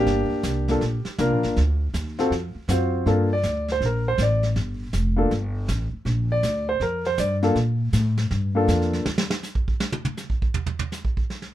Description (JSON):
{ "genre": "jazz piano trio", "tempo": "160 BPM", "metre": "4/4", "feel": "swing 65% on 8ths", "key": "G minor", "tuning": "A4 = 440 Hz", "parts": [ { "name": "warm baby grand piano", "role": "melody", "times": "0.0-9.0 s", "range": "Bb3 to D5", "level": "-22 LUFS", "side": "left 1 dB", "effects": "none" }, { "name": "upright bass", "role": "bass", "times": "0.0-9.3 s", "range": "F1 to Bb2", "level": "-23 LUFS", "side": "equal", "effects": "none" }, { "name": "vintage brush drum kit", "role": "drums", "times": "0.1-11.5 s", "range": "brushed snare drum, hi-hat, kick drum, snare drum, toms", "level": "-28 LUFS", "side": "right 2 dB", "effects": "none" } ], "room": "light reverb", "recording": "minimal, uncompressed stereo recording, faint mains hum", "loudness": "-21 LUFS", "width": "side -13 dB against mid", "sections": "0.0-3.1 A section; 3.1-11.5 B section", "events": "grand piano solo 3.1-11.5; drum solo 9.1-11.5", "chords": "0.1 Gm7; 1.6 D7#9; 3.1 Gm7; 9.1 N.C.", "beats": "| 0.06 0.44 0.81 1.19 | 1.56 1.94 2.31 2.69 | 3.06 3.44 3.81 4.19 | 4.57 4.94 5.32 5.69 | 6.07 6.44 6.81 7.19 | 7.56 7.94 8.31 8.69 | 9.06 9.44 9.81 10.18 | 10.56 10.93 11.30" }